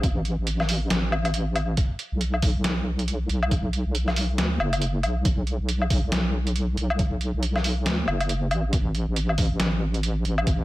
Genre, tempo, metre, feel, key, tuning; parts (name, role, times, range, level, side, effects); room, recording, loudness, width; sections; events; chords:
deep dubstep; 138 BPM; 4/4; swing 59% on 16ths, half-time; B minor; A4 = 440 Hz
deep soft wobble bass; bass; 0.0-10.6 s; F#1 to D2; -24 LUFS; equal; chorus
electronic kick drum; drums; 0.0-10.6 s; -23 LUFS; equal; overdrive
trip hop sampler-style drum kit; drums; 0.0-10.6 s; hi-hat, snare drum, woodblock; -27 LUFS; equal; overdrive
little or no reverb; -22 LUFS; side -17 dB against mid
0.0-10.6 A section